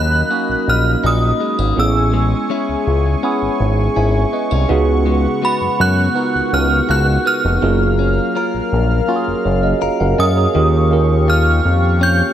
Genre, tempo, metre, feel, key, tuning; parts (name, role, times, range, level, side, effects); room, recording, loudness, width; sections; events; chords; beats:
R&B; 82 BPM; 4/4; straight; A4 = 441 Hz
synth chime; melody; 0.0-12.3 s; B5 to G6; -19 LUFS; right 2 dB; ensemble chorus, ping-pong delay
tine electric piano; accompaniment; 0.0-12.3 s; A#3 to G#5; -20 LUFS; right 7 dB; phaser
warm analog pad; sustained chords; 0.0-12.3 s; A#3 to E#6; -23 LUFS; left 2 dB; chorus
direct-recorded clean electric guitar; arpeggios; 0.0-12.3 s; C#3 to A#4; -23 LUFS; left 11 dB; ping-pong delay
fat analog bass; bass; 0.0-12.2 s; E#1 to F#2; -16 LUFS; equal
light reverb; -13 LUFS; side -10 dB against mid
0.0-10.6 A section; 10.6-12.3 B section
tine electric piano fill 3.6-4.7, 9.1-10.6
0.0 Bmaj7; 1.8 Amaj7; 4.7 C#7sus4; 7.6 F#maj7; 10.6 D#9
0.31 1.04 | 1.77 2.50 3.23 3.96 | 4.70 5.43 6.16 6.89 | 7.62 8.36 9.09 9.82 | 10.55 11.28 12.01